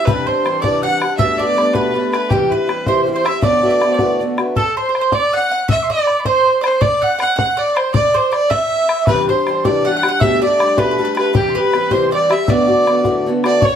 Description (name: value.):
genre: celtic folk, Celtic jig.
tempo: 106 BPM (dotted quarters).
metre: 6/8.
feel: straight.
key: unclear.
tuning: A4 = 440 Hz.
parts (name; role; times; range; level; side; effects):
rich fiddle; melody; 0.0-13.8 s; G4 to F#5; -17 LUFS; right 1 dB; plate reverb.
breathy bright jazz flute; second line; 0.0-13.8 s; G5 to F#6; -23 LUFS; left 2 dB; none.
mandolin; second line; 0.0-13.8 s; G4 to F#5; -22 LUFS; right 5 dB; none.
picked acoustic archtop guitar; accompaniment; 0.0-4.6, 9.1-13.6 s; D2 to G4; -18 LUFS; left 1 dB; none.
bodhran; percussion; 0.1-13.7 s; none; -20 LUFS; left 2 dB; none.
room: wet small room reverb, RT60 0.5 s.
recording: heard from further back in the room.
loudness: -13 LUFS.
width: side -8 dB against mid.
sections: 0.0-4.6 A section; 4.6-13.6 A section.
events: none.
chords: 0.1 Cadd9; 1.2 Gadd9/B; 2.3 C; 3.4 D6; 4.6 N.C.; 9.1 Cadd9; 10.2 Gadd9/B; 11.3 C; 12.5 D6.